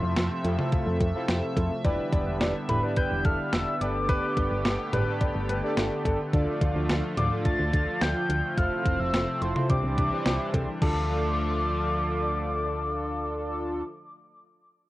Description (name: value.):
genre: synth-pop.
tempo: 107 BPM.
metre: 4/4.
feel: straight.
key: D dorian.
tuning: A4 = 444 Hz.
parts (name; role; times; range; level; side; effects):
soft octave-layered synth lead; melody; 0.0-13.8 s; B5 to A6; -31 LUFS; left 1 dB; chorus, cassette tape, tape echo.
analog synth brass; accompaniment; 0.0-13.8 s; C4 to D5; -32 LUFS; equal; chorus, cassette tape.
chorused pulse-width pad; sustained chords; 0.0-13.8 s; C3 to E5; -32 LUFS; equal; cassette tape.
solid FM bass; bass; 0.0-13.8 s; E1 to F2; -30 LUFS; equal; none.
clean 12-bit digital drum machine; drums; 0.2-10.9 s; cowbell, crash cymbal, hi-hat, kick drum, snare drum, toms; -27 LUFS; equal; overdrive, cassette tape.
warm grand piano; second line; 1.8-6.2, 10.8-12.5 s; A4 to D5; -34 LUFS; left 1 dB; cassette tape, tape echo, plate reverb.
room: moderate studio reverb, RT60 0.5 s.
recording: home recording on cassette.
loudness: -24 LUFS.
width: side -17 dB against mid.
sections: 0.0-10.8 A section; 10.8-13.1 B section.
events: none.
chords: 0.0 Fmaj7; 1.8 Em7; 3.8 Gadd9; 6.3 Dm; 8.6 Fmaj7; 9.7 Cadd9; 10.8 Dm.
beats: 0.17 0.73 1.29 | 1.85 2.41 2.97 3.53 | 4.09 4.65 5.21 5.77 | 6.33 6.89 7.46 8.02 | 8.58 9.14 9.70 10.26 | 10.82 11.38 11.94 12.50.